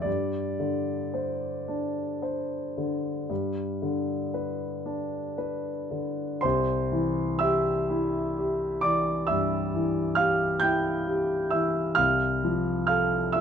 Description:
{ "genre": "classical, romantic nocturne for solo piano", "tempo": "36-46 BPM (dotted quarters)", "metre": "12/8", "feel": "rubato", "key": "C major", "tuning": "A4 = 438 Hz", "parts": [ { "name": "warm concert grand piano", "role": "solo", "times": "0.0-13.4 s", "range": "C2 to G6", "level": "-25 LUFS", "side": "equal", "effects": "none" } ], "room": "moderate small room reverb, RT60 0.5 s", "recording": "dark, warm production", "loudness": "-25 LUFS", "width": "side -7 dB against mid", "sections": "0.0-6.4 A section; 6.4-13.4 A section", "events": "none", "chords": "0.1 Gsus4; 3.3 G; 6.4 C; 12.0 F/C", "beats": "| 0.06 1.69 3.30 4.87 | 6.44 7.90 9.30 10.62 | 11.98 13.34" }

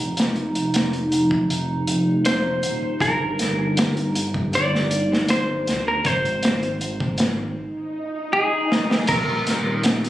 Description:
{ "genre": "trip hop", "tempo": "79 BPM", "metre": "4/4", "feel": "straight", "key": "C minor", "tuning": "A4 = 440 Hz", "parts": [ { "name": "warbly tape-like pad", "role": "sustained chords", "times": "0.0-10.1 s", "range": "Eb4", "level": "-27 LUFS", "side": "right 1 dB", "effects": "chorus, built-in reverb" }, { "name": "dark detuned saw bass", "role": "bass", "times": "0.0-10.1 s", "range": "Eb1 to D2", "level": "-25 LUFS", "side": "equal", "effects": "none" }, { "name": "crunchy breakbeat drum kit", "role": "drums", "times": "0.2-10.1 s", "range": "crash cymbal, hi-hat, kick drum, snare drum", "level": "-23 LUFS", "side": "equal", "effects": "none" }, { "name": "semi-hollow electric guitar", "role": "melody", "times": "2.3-10.1 s", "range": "Ab4 to D5", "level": "-23 LUFS", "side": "equal", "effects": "tape echo" }, { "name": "swell", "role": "sound effects", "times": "7.8-9.1 s", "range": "none", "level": "-28 LUFS", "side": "equal", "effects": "none" } ], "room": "light reverb, small room ambience", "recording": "recorded on a phone in the room, club reverb, compression", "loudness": "-19 LUFS", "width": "side -14 dB against mid", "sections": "0.0-9.1 A section; 9.1-10.1 B section", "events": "swell 7.8-9.1; drum fill 8.7-9.1", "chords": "0.0 F5; 3.0 Cm9/G (rootless); 6.0 Ab; 9.1 Eb5", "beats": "0.73 1.49 2.25 | 3.01 3.77 4.53 5.29 | 6.05 6.81 7.57 8.32 | 9.09 9.84" }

